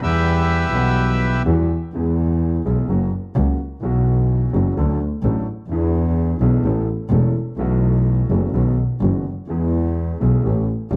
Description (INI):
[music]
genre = tango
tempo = 127 BPM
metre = 4/4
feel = rubato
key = E major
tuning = A4 = 441 Hz
[part]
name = bandoneon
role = melody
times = 0.0-1.4 s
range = G4 to E5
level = -24 LUFS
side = equal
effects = cassette tape
[part]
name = dark upright piano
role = accompaniment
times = 0.0-11.0 s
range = E1 to F#5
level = -26 LUFS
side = equal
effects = none
[part]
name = warm double bass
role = bass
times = 0.0-11.0 s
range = E1 to E2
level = -20 LUFS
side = equal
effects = none
[sound]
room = light reverb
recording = home recording on cassette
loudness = -19 LUFS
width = mono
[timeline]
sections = 0.0-1.9 A section; 1.9-11.0 B section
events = none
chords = 0.0 Emadd9; 1.9 E; 2.9 F#; 3.8 Bsus4; 4.8 D; 5.7 E7; 6.6 A; 7.6 B7sus4; 8.5 B6; 9.5 E; 10.4 A7